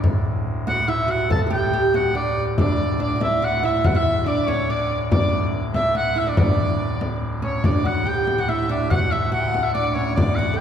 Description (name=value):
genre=medieval dance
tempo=142 BPM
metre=3/4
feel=straight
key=D major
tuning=A4 = 441 Hz
part: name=pipe organ, soft reed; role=drone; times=0.0-10.6 s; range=D2 to A2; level=-27 LUFS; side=equal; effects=none
part: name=frame drum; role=percussion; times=0.0-10.5 s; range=none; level=-23 LUFS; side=left 1 dB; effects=none
part: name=bright shawm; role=melody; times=0.7-10.6 s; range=C#5 to A5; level=-25 LUFS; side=equal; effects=none
part: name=oud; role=second line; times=0.7-10.6 s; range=C#4 to A4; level=-24 LUFS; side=right 2 dB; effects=none
part: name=rich fiddle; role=second line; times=2.6-10.6 s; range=C#5 to G5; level=-28 LUFS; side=left 4 dB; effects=none
room=wet concert hall reverb, RT60 2.2 s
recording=heard from further back in the room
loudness=-18 LUFS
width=side -8 dB against mid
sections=0.0-7.6 A section; 7.6-10.6 B section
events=none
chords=none